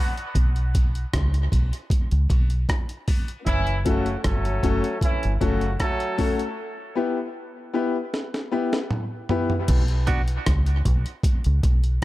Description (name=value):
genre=dub reggae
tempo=77 BPM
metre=4/4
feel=straight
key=unclear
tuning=A4 = 442 Hz
part: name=clear horn section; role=second line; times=0.0-6.4 s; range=C#3 to A4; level=-29 LUFS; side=right 1 dB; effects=high-pass filter, dub echo
part: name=clear grand piano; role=stabs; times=0.0-9.5 s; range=A3 to B4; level=-27 LUFS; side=left 4 dB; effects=high-pass filter, dub echo
part: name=breakbeat sampler-style drum kit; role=drums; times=0.2-12.0 s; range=crash cymbal, hi-hat, kick drum, rim click, snare drum, toms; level=-24 LUFS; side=equal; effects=none
part: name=deep dub fingered electric bass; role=bass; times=0.4-12.0 s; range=F#1 to C#2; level=-22 LUFS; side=equal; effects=none
part: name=clean electric guitar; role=accompaniment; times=10.1-10.2 s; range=B3 to F#4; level=-32 LUFS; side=right 5 dB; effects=dub echo
room=little or no reverb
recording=none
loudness=-21 LUFS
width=side -17 dB against mid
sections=0.0-9.7 A section; 9.7-12.0 B section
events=break 0.0-9.7; filter sweep 0.0-3.5; drum fill 8.1-9.7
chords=0.0 Bm; 3.5 F#m; 6.6 Em; 9.7 N.C.